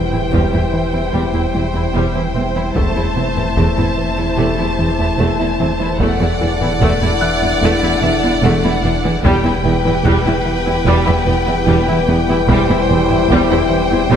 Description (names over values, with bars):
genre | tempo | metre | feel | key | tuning
cinematic, hybrid orchestral and electronic film score | 74 BPM | 4/4 | straight | unclear | A4 = 439 Hz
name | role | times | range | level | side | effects
warm symphonic violin section | melody | 0.0-14.2 s | F#5 to A5 | -23 LUFS | left 2 dB | none
rich chamber violin section | second line | 0.0-14.2 s | B4 to D5 | -23 LUFS | left 3 dB | none
airy breathy pad | sustained chords | 0.0-14.2 s | E3 to E5 | -26 LUFS | equal | chorus
dark trombone section | sustained chords | 0.0-14.2 s | E3 to A3 | -24 LUFS | right 2 dB | none
mellow French horn section | sustained chords | 0.0-14.2 s | B3 to E4 | -24 LUFS | left 5 dB | none
chorused synth bass | riff | 0.0-14.2 s | E2 to E3 | -23 LUFS | right 2 dB | none
sub bass with octave | bass | 0.0-14.2 s | E1 | -24 LUFS | left 1 dB | none
bright grand piano | texture | 0.0-14.2 s | E4 to F#6 | -28 LUFS | left 2 dB | none
warm studio viola section | accompaniment | 0.1-14.2 s | G3 to E4 | -23 LUFS | right 1 dB | none
warm symphonic cello section | bass | 0.1-14.2 s | E2 | -21 LUFS | right 1 dB | none
taiko ensemble | drums | 0.1-14.1 s | none | -22 LUFS | equal | none
warm symphonic double bass section | bass | 0.3-14.2 s | E1 | -21 LUFS | right 2 dB | none
room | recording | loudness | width
moderate scoring stage reverb, RT60 1.6 s | none | -13 LUFS | side -8 dB against mid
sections
0.0-14.2 A section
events
none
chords
0.0 C/E; 2.8 Am/E; 6.0 Dadd9/E; 9.2 Em; 12.5 C/E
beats
0.33 1.14 1.95 | 2.76 3.57 4.38 5.19 | 6.00 6.81 7.62 8.44 | 9.25 10.06 10.87 11.68 | 12.49 13.30 14.11